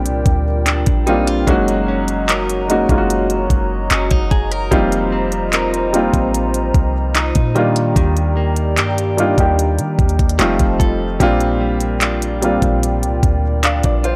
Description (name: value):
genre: contemporary R&B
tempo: 74 BPM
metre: 4/4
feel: straight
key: Bb major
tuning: A4 = 440 Hz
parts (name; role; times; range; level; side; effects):
- warm baby grand piano; accompaniment; 0.0-14.2 s; G3 to F5; -21 LUFS; equal; none
- hollow soft pad; sustained chords; 0.0-14.2 s; F4 to Bb5; -26 LUFS; equal; chorus
- direct-recorded clean electric guitar; arpeggios; 0.0-14.2 s; Bb2 to Bb4; -27 LUFS; equal; analog delay
- clean 808-style bass; bass; 0.0-14.2 s; F1 to Eb3; -22 LUFS; equal; none
- trap drum kit; drums; 0.1-14.2 s; handclaps, hi-hat, kick drum; -19 LUFS; equal; none
room: digital ambience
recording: dry, gritty hardware recording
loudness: -16 LUFS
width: mono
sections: 0.0-14.2 A section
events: none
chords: 0.0 Bb6; 1.5 Gb6; 4.7 F7sus4; 7.6 Ebmaj7; 10.4 F7; 11.2 Bb6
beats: 0.66 | 1.47 2.29 3.10 3.91 | 4.72 5.53 6.34 7.15 | 7.96 8.77 9.58 10.39 | 11.20 12.02 12.83 13.64